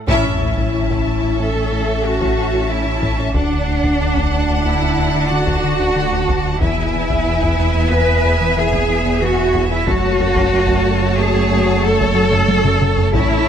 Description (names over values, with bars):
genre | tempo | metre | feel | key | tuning
cinematic, hybrid orchestral and electronic film score | 92 BPM | 5/4 | straight | F# minor | A4 = 441 Hz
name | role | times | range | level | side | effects
rich studio cello section | bass | 0.0-13.5 s | C#4 to B4 | -20 LUFS | right 3 dB | none
warm symphonic violin section | melody | 0.1-13.5 s | G#5 to A5 | -27 LUFS | left 4 dB | none
warm symphonic violin section | second line | 0.1-13.5 s | C#5 to F#5 | -25 LUFS | left 3 dB | none
warm symphonic viola section | accompaniment | 0.1-13.5 s | A3 to D4 | -25 LUFS | right 2 dB | none
dark French horn section | sustained chords | 0.1-13.5 s | C#4 to B4 | -23 LUFS | left 4 dB | none
smooth synth bass | riff | 0.1-13.4 s | D2 to A3 | -22 LUFS | left 2 dB | none
warm sub bass | bass | 0.1-13.5 s | D1 to A1 | -25 LUFS | equal | none
warm symphonic double bass section | bass | 0.1-13.5 s | A1 to F#2 | -22 LUFS | right 4 dB | none
taiko ensemble | drums | 0.1-13.5 s | none | -23 LUFS | equal | none
sub drop | sound effects | 0.1-3.4 s | none | -27 LUFS | equal | none
room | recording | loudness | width
light reverb | none | -14 LUFS | side -8 dB against mid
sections
0.1-13.5 A section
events
band accent 0.1-0.7; impact 0.1-3.4; drum fill 12.3-13.1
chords
0.1 A; 3.4 D; 6.6 E; 9.9 F#m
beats
| 0.10 0.75 1.40 2.05 2.70 | 3.36 4.01 4.66 5.31 5.96 | 6.62 7.27 7.92 8.57 9.23 | 9.88 10.53 11.18 11.83 12.49 | 13.14